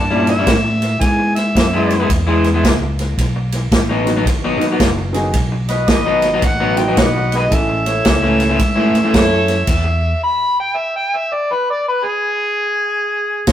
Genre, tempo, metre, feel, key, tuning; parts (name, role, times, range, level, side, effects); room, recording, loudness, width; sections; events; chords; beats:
electric blues shuffle; 111 BPM; 4/4; swing 63% on 8ths; E major; A4 = 440 Hz
overdriven harmonica; melody; 0.0-2.1, 5.9-13.5 s; G#4 to B5; -18 LUFS; equal
fingered electric bass; bass; 0.0-10.1, 13.5 s; F1 to A2; -20 LUFS; equal
electric guitar at the edge of break-up; riff; 0.1-9.9 s; A2 to E4; -18 LUFS; left 1 dB
swinging big-band drum kit; drums; 0.3-9.8, 13.5 s; crash cymbal, kick drum, ride cymbal, snare drum; -17 LUFS; equal
clear upright piano; accompaniment; 1.0-7.8 s; D#3 to A4; -22 LUFS; right 1 dB
warm horn section; stabs; 5.7-9.6, 13.5 s; Eb4 to D#5; -21 LUFS; left 1 dB
moderate stone room reverb, RT60 1.2 s; rough rehearsal-room recording, warm saturation; -13 LUFS; side -11 dB against mid
0.0-13.5 A section
stop 9.7-13.5
0.0 A#dim7; 1.0 E; 3.2 B; 7.5 A; 9.7 E
0.47 | 1.01 1.56 2.10 2.64 | 3.18 3.72 4.27 4.81 | 5.35 5.89 6.43 6.97 | 7.52 8.06 8.60 9.14 | 9.68 10.23 10.77 11.31 | 11.85 12.39 12.94 13.48